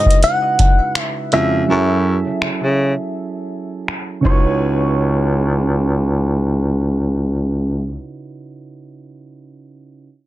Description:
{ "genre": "contemporary R&B", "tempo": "82 BPM", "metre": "4/4", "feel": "swing 54% on 16ths", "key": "C# minor", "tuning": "A4 = 439 Hz", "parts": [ { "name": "direct-recorded clean electric guitar", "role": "melody", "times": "0.0-8.0 s", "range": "C#5 to F#5", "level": "-20 LUFS", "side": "left 2 dB", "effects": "digital delay" }, { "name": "soft electric-piano-like synth keys", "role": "accompaniment", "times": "0.0-10.1 s", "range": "C#3 to B4", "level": "-22 LUFS", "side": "right 4 dB", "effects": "chorus" }, { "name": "booming analog drum machine", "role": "drums", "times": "0.1-4.5 s", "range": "crash cymbal, finger snaps, hi-hat, kick drum", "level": "-16 LUFS", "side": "equal", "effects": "soft clipping on snare" }, { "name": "breathy baritone saxophone", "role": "bass", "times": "1.3-8.0 s", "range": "C#2 to C#3", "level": "-17 LUFS", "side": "equal", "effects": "none" } ], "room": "light reverb", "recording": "dense, heavily limited modern master, low-pass filter", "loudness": "-15 LUFS", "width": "side -15 dB against mid", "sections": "0.0-4.6 A section; 4.6-7.5 B section", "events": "break 1.7-4.6", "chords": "0.0 C#m11; 1.7 F#m9; 4.2 C#m11", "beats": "0.23 0.96 | 1.69 2.42 3.15 3.88 | 4.62 5.35 6.08 6.81" }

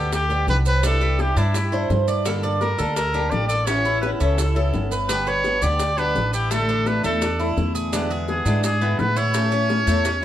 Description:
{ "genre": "latin, Cuban son and guajira", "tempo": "169 BPM", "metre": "4/4", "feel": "straight", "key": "unclear", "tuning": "A4 = 444 Hz", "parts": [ { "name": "clear trumpet", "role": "melody", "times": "0.0-10.2 s", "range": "E4 to D5", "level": "-23 LUFS", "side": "equal", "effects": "none" }, { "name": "picked old ladder-braced acoustic guitar", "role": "accompaniment", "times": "0.0-10.2 s", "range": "B2 to A4", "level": "-27 LUFS", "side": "left 3 dB", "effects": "none" }, { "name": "Cuban tres", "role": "arpeggios", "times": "0.0-10.2 s", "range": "A3 to D5", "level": "-28 LUFS", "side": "right 4 dB", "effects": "none" }, { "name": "upright bass", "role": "bass", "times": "0.0-10.2 s", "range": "G1 to A2", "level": "-23 LUFS", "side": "equal", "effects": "none" }, { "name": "bongos", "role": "percussion", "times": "0.1-10.2 s", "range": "none", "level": "-31 LUFS", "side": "left 6 dB", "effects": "none" }, { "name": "maracas", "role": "percussion", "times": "0.1-10.2 s", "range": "none", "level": "-34 LUFS", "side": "right 7 dB", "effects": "none" } ], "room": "moderate studio reverb, RT60 0.6 s", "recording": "none", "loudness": "-18 LUFS", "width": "side -12 dB against mid", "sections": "0.0-10.2 A section", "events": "none", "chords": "0.0 Gadd9; 0.8 Cadd9; 2.3 Gmadd9; 3.7 Aadd9; 5.1 G; 6.5 Asus4; 7.9 E7; 9.3 A", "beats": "0.12 0.48 | 0.84 1.19 1.55 1.90 | 2.26 2.61 2.97 3.32 | 3.68 4.03 4.38 4.74 | 5.09 5.45 5.80 6.16 | 6.51 6.87 7.22 7.58 | 7.93 8.28 8.64 8.99 | 9.34 9.70 10.05" }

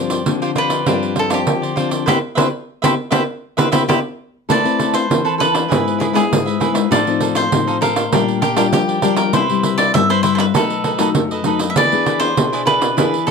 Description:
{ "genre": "samba and choro", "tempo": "99 BPM", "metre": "4/4", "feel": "straight", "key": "C major, A minor from 4.5 s", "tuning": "A4 = 439 Hz", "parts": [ { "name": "cavaquinho", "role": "melody", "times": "0.0-13.3 s", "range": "G4 to E5", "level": "-20 LUFS", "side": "left 1 dB", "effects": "none" }, { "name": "cavaquinho", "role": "accompaniment", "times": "0.0-13.3 s", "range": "D4 to A5", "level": "-22 LUFS", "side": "right 6 dB", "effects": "none" }, { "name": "nylon-string guitar", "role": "accompaniment", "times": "0.0-13.3 s", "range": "F#2 to B4", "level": "-19 LUFS", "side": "left 9 dB", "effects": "none" }, { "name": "pandeiro", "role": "percussion", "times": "0.1-13.3 s", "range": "none", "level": "-19 LUFS", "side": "right 4 dB", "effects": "none" } ], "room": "light reverb", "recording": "close, detailed microphones", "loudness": "-14 LUFS", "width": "side -5 dB against mid", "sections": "0.0-4.5 A section; 4.5-13.3 B section", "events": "band accent 2.1-4.5", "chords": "0.0 G7sus4; 2.1 Cmaj7; 4.5 Amadd9; 5.7 E/G#; 6.9 F7/A; 8.1 Bb6; 9.3 Cmaj7; 10.5 B7; 11.8 E7", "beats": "0.26 0.86 1.47 | 2.07 2.68 3.28 3.89 | 4.49 5.10 5.71 6.31 | 6.92 7.52 8.12 8.73 | 9.34 9.94 10.55 11.15 | 11.76 12.36 12.97" }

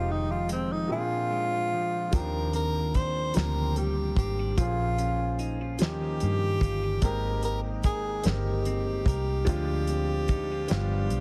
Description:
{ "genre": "slow six-eight R&B", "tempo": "49 BPM (dotted quarters)", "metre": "6/8", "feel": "straight", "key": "Eb major", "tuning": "A4 = 440 Hz", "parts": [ { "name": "breathy tenor saxophone", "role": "melody", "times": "0.0-11.2 s", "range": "C4 to C5", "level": "-33 LUFS", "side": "equal", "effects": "digital delay" }, { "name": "semi-hollow electric guitar", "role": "second line", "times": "0.0-11.2 s", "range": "F2 to Bb4", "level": "-37 LUFS", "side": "equal", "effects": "digital delay" }, { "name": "warm concert grand piano", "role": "accompaniment", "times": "0.0-11.2 s", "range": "F3 to C5", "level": "-38 LUFS", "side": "equal", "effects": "none" }, { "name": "vintage muted fingered electric bass", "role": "bass", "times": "0.0-11.2 s", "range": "F1 to G2", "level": "-32 LUFS", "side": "equal", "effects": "none" }, { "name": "warm soul drum kit", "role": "drums", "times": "0.5-11.2 s", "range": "hi-hat, kick drum, snare drum", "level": "-30 LUFS", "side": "equal", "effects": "none" } ], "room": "light reverb, studio reverb", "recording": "heavily compressed radio sound, multiband compression", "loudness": "-28 LUFS", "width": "mono", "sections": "0.0-2.1 A section; 2.1-11.2 B section", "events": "tenor saxophone solo 0.0-2.1; drums muted 0.9-2.1", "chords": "0.0 Fm7; 0.9 Bb7; 2.1 Ebmaj13; 4.6 Bbm7; 5.8 Eb7; 7.0 Abmaj9; 9.5 Dm7b5; 10.7 G7", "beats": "0.90 | 2.13 3.35 | 4.58 5.80 | 7.03 8.25 | 9.47 10.70" }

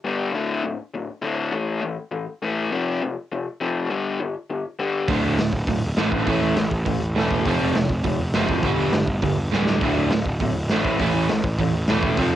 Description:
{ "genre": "punk rock", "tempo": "203 BPM", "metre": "4/4", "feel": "straight", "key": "unclear", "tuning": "A4 = 440 Hz", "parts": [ { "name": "raw garage guitar", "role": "riff", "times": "0.0-12.4 s", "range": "D2 to A3", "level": "-24 LUFS", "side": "left 4 dB", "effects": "overdrive, cassette tape" }, { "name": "overdriven electric guitar", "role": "riff", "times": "5.1-12.4 s", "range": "D2 to A3", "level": "-24 LUFS", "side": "right 8 dB", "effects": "cassette tape" }, { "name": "fuzz picked electric bass", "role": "bass", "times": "5.1-12.4 s", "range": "D1 to A1", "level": "-24 LUFS", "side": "equal", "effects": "overdrive" }, { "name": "raw garage drum kit", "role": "drums", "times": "5.1-12.2 s", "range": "hi-hat, kick drum, snare drum", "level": "-25 LUFS", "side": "equal", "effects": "cassette tape" } ], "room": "little or no reverb", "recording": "home recording on cassette", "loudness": "-20 LUFS", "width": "side -12 dB against mid", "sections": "0.0-12.4 A section", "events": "drum fill 9.5", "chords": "0.3 D5; 1.5 A5; 2.7 F5; 3.9 G5; 5.1 D5; 6.3 A5; 7.5 F5; 8.6 G5; 9.8 D5; 11.0 A5", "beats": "0.03 | 0.33 0.63 0.93 1.23 | 1.52 1.82 2.12 2.42 | 2.71 3.01 3.31 3.60 | 3.90 4.20 4.49 4.79 | 5.09 5.38 5.68 5.97 | 6.27 6.57 6.86 7.16 | 7.45 7.75 8.04 8.34 | 8.63 8.93 9.23 9.52 | 9.82 10.11 10.41 10.71 | 11.00 11.30 11.59 11.89 | 12.19" }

